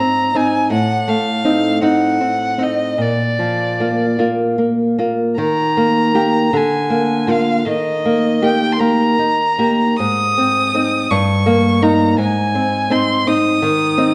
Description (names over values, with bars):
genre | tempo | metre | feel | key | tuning
romantic duo for violin and classical guitar | 49-57 BPM (dotted quarters) | 6/8 | rubato | Eb major | A4 = 440 Hz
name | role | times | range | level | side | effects
rich violin | melody | 0.0-14.1 s | D5 to Eb6 | -20 LUFS | equal | slapback echo
nylon-string guitar | accompaniment | 0.0-14.1 s | G2 to G4 | -18 LUFS | equal | none
room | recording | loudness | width
wet recital hall reverb, RT60 1.6 s | dark, warm production | -16 LUFS | mono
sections
0.0-5.4 A section; 5.4-14.1 B section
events
none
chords
0.0 Abadd9; 0.7 Adim7; 3.0 Bb; 5.4 Eb; 6.5 Bb7/D; 7.7 Eb; 10.0 Ab; 11.1 Eb7/G; 12.2 Ab